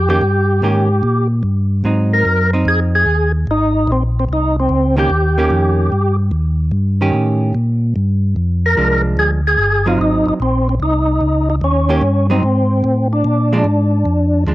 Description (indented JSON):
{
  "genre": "soul jazz organ trio",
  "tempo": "147 BPM",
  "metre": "4/4",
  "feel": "swing 67% on 8ths",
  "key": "Eb mixolydian",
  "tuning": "A4 = 440 Hz",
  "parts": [
    { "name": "percussive tonewheel organ", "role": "melody", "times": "0.0-6.2, 8.7-14.4 s", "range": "C4 to Bb4", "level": "-16 LUFS", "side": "equal", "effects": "slow rotary speaker, overdrive, chorus vibrato, cassette tape" },
    { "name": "mellow tonewheel organ", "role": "bass", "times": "0.0-14.5 s", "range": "G1 to Bb2", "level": "-15 LUFS", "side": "equal", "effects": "slow rotary speaker" },
    { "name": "hollow-body jazz guitar", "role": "accompaniment", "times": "0.1-14.5 s", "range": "Eb3 to G4", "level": "-19 LUFS", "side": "right 3 dB", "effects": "cassette tape" }
  ],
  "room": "digital ambience",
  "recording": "home recording on cassette",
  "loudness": "-13 LUFS",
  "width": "side -16 dB against mid",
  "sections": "0.0-14.5 A section",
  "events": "none",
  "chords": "0.0 Eb7; 1.8 Ab7; 5.1 Eb7; 8.4 Bb7; 10.0 Ab7; 11.6 Eb7; 12.4 Ab; 13.2 Bb7"
}